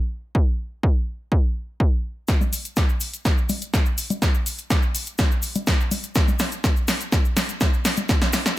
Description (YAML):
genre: techno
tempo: 124 BPM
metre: 4/4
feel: straight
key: none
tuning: none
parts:
  - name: electronic kick drum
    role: drums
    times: 0.3-8.2 s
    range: none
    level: -20 LUFS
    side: equal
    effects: none
  - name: punchy analog drum machine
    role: drums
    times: 2.3-8.6 s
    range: congas, hi-hat, snare drum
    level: -24 LUFS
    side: equal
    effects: none
  - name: cabasa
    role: percussion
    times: 2.3-8.6 s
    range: none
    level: -32 LUFS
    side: left 3 dB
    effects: none
room: little or no reverb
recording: none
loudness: -20 LUFS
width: side -16 dB against mid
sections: 0.0-2.3 A section; 2.3-8.6 B section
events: build-up 2.3-8.6; drum fill 2.3-8.6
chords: none